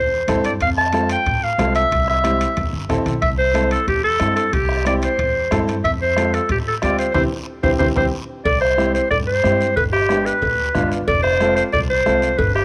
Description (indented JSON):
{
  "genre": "latin, cumbia",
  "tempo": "183 BPM",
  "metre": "4/4",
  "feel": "straight",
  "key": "C major",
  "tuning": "A4 = 440 Hz",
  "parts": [
    { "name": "bright clarinet", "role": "melody", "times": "0.0-12.6 s", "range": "G4 to A5", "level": "-21 LUFS", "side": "equal", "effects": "none" },
    { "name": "upright bass", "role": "bass", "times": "0.0-12.6 s", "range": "F1 to A2", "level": "-27 LUFS", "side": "equal", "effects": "none" },
    { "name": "bright upright piano", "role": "accompaniment", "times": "0.3-12.3 s", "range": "B3 to A4", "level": "-27 LUFS", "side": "equal", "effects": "none" },
    { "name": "bombo", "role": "percussion", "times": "0.3-12.6 s", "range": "none", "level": "-29 LUFS", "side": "equal", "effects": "none" },
    { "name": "congas", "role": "percussion", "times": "0.3-12.6 s", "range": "none", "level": "-30 LUFS", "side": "equal", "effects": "none" },
    { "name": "guiro", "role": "percussion", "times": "0.3-12.6 s", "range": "none", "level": "-39 LUFS", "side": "equal", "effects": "none" },
    { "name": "timbales and cowbell", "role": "percussion", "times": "0.3-12.6 s", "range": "none", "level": "-31 LUFS", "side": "equal", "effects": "none" }
  ],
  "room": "light reverb, small room ambience",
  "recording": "none",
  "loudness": "-18 LUFS",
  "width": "mono",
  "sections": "0.0-8.5 A section; 8.5-12.6 B section",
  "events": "drum fill 2.2-3.2, 7.5-8.5; band accent 7.2-8.5",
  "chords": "0.0 C; 0.6 F; 1.9 C; 5.8 F; 7.2 C; 9.8 G7; 11.1 F",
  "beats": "0.28 | 0.61 0.93 1.26 1.59 | 1.92 2.24 2.57 2.90 | 3.22 3.55 3.88 4.21 | 4.53 4.86 5.19 5.51 | 5.84 6.17 6.50 6.82 | 7.15 7.48 7.80 8.13 | 8.46 8.79 9.11 9.44 | 9.77 10.10 10.42 10.75 | 11.08 11.40 11.73 12.06 | 12.39"
}